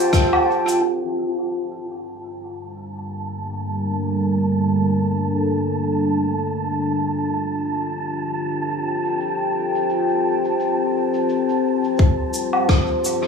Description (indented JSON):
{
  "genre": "ambient dub",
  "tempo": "86 BPM",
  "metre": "4/4",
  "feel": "swing 56% on 16ths",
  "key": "G minor",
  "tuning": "A4 = 440 Hz",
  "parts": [
    { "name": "deep dark ambient pad", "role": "sustained chords", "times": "0.0-13.3 s", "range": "G3 to A5", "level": "-20 LUFS", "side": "left 1 dB", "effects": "chorus, built-in reverb" },
    { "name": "electronic kick drum", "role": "drums", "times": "0.1-0.3, 12.0-12.8 s", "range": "none", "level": "-15 LUFS", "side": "left 1 dB", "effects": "none" },
    { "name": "rim click, shaker and woodblock", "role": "drums", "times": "0.1-13.2 s", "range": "none", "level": "-22 LUFS", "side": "left 1 dB", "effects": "low-pass filter on snare, low-pass filter on perc, low-pass filter on room, dub echo" },
    { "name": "wind-like tuned noise texture", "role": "texture", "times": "2.1-12.0 s", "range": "A5", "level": "-30 LUFS", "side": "right 5 dB", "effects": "built-in reverb" }
  ],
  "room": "moderate plate reverb, RT60 2.2 s",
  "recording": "echo-heavy mix, low-pass filter, studio reverb",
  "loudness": "-19 LUFS",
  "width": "side -5 dB against mid",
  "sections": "0.8-12.0 A section; 12.0-13.3 B section",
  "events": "filter sweep 0.8-12.0",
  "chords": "0.0 F; 0.8 Gm7; 6.4 F; 12.0 G7(no3)"
}